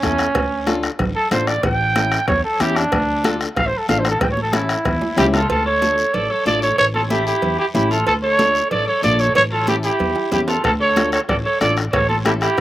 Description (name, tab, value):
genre	latin, cumbia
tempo	186 BPM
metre	4/4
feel	straight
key	D harmonic minor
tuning	A4 = 440 Hz
part	growling trumpet	melody	0.0-12.6 s	C#4 to G5	-18 LUFS	right 1 dB	slapback echo
part	flamenco guitar	accompaniment	0.0-12.5 s	C#4 to A4	-23 LUFS	left 3 dB	none
part	upright bass	bass	0.0-12.6 s	A1 to E2	-24 LUFS	equal	none
part	bombo	percussion	0.0-5.5, 10.6-12.6 s	none	-24 LUFS	left 2 dB	none
part	congas	percussion	0.0-12.6 s	none	-27 LUFS	right 1 dB	none
part	guiro	percussion	0.0-12.6 s	none	-34 LUFS	left 4 dB	none
part	cowbell and timbales	percussion	0.3-12.6 s	none	-28 LUFS	right 4 dB	slapback echo
part	electric guitar at the edge of break-up	second line	5.2-12.6 s	E4 to A4	-25 LUFS	right 1 dB	slapback echo
room	little or no reverb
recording	recorded outdoors, with no room sound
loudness	-15 LUFS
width	side -14 dB against mid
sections	0.0-5.5 A section; 5.5-12.6 B section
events	trumpet solo 0.0-5.5; drum fill 5.0-5.5, 10.2-10.6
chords	0.4 Dm; 1.6 A7; 2.9 Dm; 4.2 A7; 5.5 Dm; 6.8 A7; 8.1 Dm; 9.4 A7; 10.6 Dm; 11.9 A7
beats	0.03 | 0.35 0.67 1.00 1.32 | 1.64 1.96 2.28 2.60 | 2.92 3.25 3.57 3.89 | 4.21 4.53 4.85 5.17 | 5.50 5.82 6.14 6.46 | 6.78 7.10 7.42 7.75 | 8.07 8.39 8.71 9.03 | 9.36 9.68 10.00 10.32 | 10.64 10.97 11.29 11.61 | 11.93 12.26 12.58